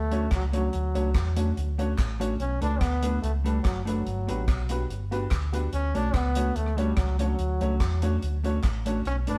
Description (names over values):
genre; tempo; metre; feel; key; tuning
ska; 144 BPM; 4/4; swing 53% on 8ths; D major; A4 = 440 Hz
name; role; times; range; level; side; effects
clear trombone; melody; 0.0-9.4 s; F#3 to D4; -34 LUFS; equal; none
fingered electric bass; bass; 0.0-9.4 s; F#1 to E2; -30 LUFS; equal; none
mellow electric guitar; accompaniment; 0.1-9.4 s; A3 to F#4; -35 LUFS; equal; none
warm upright piano; stabs; 0.1-9.4 s; D4 to C#5; -38 LUFS; equal; none
deep reggae drum kit; drums; 0.1-9.4 s; hi-hat, kick drum, rim click; -31 LUFS; equal; none
group handclap; percussion; 0.3-8.7 s; none; -44 LUFS; equal; slapback echo
room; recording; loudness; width
light reverb; band playing live in one room; -27 LUFS; mono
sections
0.0-9.4 A section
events
none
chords
0.0 Dmaj7; 2.4 Bm7; 4.1 Gmaj7; 5.7 Dmaj7